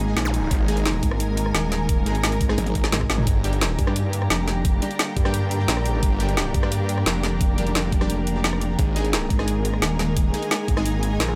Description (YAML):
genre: dark technical drum and bass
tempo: 174 BPM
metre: 4/4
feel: straight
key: G phrygian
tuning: A4 = 440 Hz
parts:
  - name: muted studio string section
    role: sustained chords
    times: 0.0-11.4 s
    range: D3 to Bb4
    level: -32 LUFS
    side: equal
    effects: sidechain pumping
  - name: metallic wobble bass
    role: bass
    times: 0.0-11.2 s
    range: Eb1 to G2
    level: -26 LUFS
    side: equal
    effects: chorus
  - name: granular cloud pad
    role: texture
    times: 0.0-11.4 s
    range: D4 to Bb5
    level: -34 LUFS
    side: equal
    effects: built-in reverb, sidechain pumping
  - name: snarling distorted saw bass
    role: bass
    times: 0.2-6.5, 8.8-11.4 s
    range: G1 to Bb1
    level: -27 LUFS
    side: equal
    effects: sidechain pumping
  - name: drum and bass drum kit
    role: drums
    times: 0.2-11.4 s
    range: hi-hat, rim click, snare drum, toms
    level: -28 LUFS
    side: equal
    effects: overdrive, studio reverb
  - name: electronic kick drum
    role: drums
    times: 0.5-10.8 s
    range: none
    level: -25 LUFS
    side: equal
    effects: overdrive, studio reverb
  - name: orchestra-hit-like synth stab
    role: stabs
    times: 0.7-10.9 s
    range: G3 to Ab4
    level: -34 LUFS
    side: equal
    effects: built-in reverb, digital delay
room: light reverb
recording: none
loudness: -22 LUFS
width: mono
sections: 0.0-11.4 A section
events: drum fill 2.6-3.3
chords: 0.0 Absus2; 3.3 Gm; 8.8 Absus2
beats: 0.17 | 0.51 0.86 1.20 1.54 | 1.89 2.23 2.58 2.92 | 3.27 3.61 3.96 4.30 | 4.65 4.99 5.34 5.68 | 6.03 6.37 6.72 7.06 | 7.41 7.75 8.10 8.44 | 8.79 9.13 9.48 9.82 | 10.17 10.51 10.86 11.20